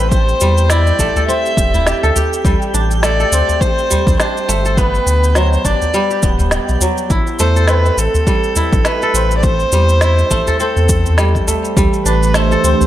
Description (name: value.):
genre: organic downtempo.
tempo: 103 BPM.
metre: 4/4.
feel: swing 57% on 16ths.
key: A dorian.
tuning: A4 = 441 Hz.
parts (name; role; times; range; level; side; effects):
warm kamancheh; melody; 0.0-12.9 s; A4 to E5; -18 LUFS; equal; tape echo.
kora; arpeggios; 0.0-12.9 s; F#3 to A4; -19 LUFS; equal; low-pass filter, tape echo.
warm sub bass; bass; 0.0-12.7 s; D1 to E2; -15 LUFS; equal; none.
twinkling granular texture; texture; 0.0-11.8 s; G4 to G5; -29 LUFS; right 2 dB; built-in reverb.
electronic kick drum; drums; 0.1-11.9 s; none; -16 LUFS; equal; none.
electronic shaker and snare drum; drums; 0.1-12.9 s; none; -20 LUFS; right 1 dB; none.
udu; percussion; 1.2-12.9 s; none; -19 LUFS; equal; none.
warbly tape-like pad; sustained chords; 12.0-12.9 s; E3 to C5; -17 LUFS; right 5 dB; chorus, built-in reverb, sidechain pumping.
room: light reverb.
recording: none.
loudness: -11 LUFS.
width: side -13 dB against mid.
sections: 0.0-11.8 A section; 11.8-12.9 B section.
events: none.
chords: 0.0 Am7; 2.4 D7sus4; 4.8 Gmaj7; 7.1 Am7; 11.8 D7sus4.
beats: | 0.12 0.70 1.28 1.86 | 2.44 3.03 3.61 4.19 | 4.78 5.36 5.94 6.52 | 7.11 7.69 8.27 8.85 | 9.44 10.02 10.60 11.18 | 11.77 12.35.